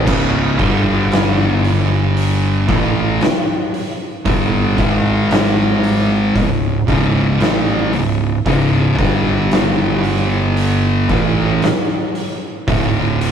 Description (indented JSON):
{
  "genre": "stoner and doom metal",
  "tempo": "57 BPM",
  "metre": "4/4",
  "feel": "straight",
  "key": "unclear",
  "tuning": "A4 = 438 Hz",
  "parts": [
    { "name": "thick fuzz guitar", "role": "riff", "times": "0.0-13.3 s", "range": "C#2 to A3", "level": "-18 LUFS", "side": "left 4 dB", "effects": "distortion" },
    { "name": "thick fuzz guitar", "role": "riff", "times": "0.0-13.3 s", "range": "C#2 to A3", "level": "-18 LUFS", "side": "right 5 dB", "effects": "distortion" },
    { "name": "growling fingered electric bass", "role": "bass", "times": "0.0-13.3 s", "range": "C#1 to A1", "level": "-24 LUFS", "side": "equal", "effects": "overdrive, tube saturation" },
    { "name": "oversized low-tuned drum kit", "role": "drums", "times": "0.1-13.3 s", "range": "crash cymbal, hi-hat, kick drum, snare drum", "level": "-18 LUFS", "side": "equal", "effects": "none" }
  ],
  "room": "light reverb",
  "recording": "rough rehearsal-room recording, tube saturation",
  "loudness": "-13 LUFS",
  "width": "side -8 dB against mid",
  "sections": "0.1-13.3 A section",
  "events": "none",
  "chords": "0.1 C#5; 0.6 G5; 2.7 Gsus2; 4.8 G#5; 6.4 C#m; 9.0 G5; 11.1 A5; 12.7 D5",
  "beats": "| 0.07 1.11 2.16 3.21 | 4.26 5.31 6.36 7.42 | 8.47 9.52 10.57 11.63 | 12.68"
}